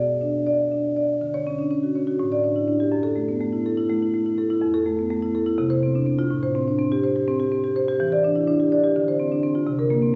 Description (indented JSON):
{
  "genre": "classical, contemporary piece for solo marimba",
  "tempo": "248 BPM (eighths)",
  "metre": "7/8",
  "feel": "rubato",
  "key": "unclear",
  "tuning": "A4 = 441 Hz",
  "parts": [
    { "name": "marimba with medium mallets", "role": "solo", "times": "0.0-10.2 s", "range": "F2 to D5", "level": "-22 LUFS", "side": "equal", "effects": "none" }
  ],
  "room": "moderate recital hall reverb, RT60 1.4 s",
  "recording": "recorded on a phone in the room, studio reverb, compression, nothing above 7.7 kHz",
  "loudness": "-22 LUFS",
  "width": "mono",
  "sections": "0.0-1.2 A section; 1.2-10.2 B section",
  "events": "none",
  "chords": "0.0 Bm; 1.2 Dmaj7; 2.2 A7sus4; 2.9 F#m7; 4.6 Fmaj7; 5.6 Csus24; 6.3 Am7; 8.0 Em7; 8.9 Dm7"
}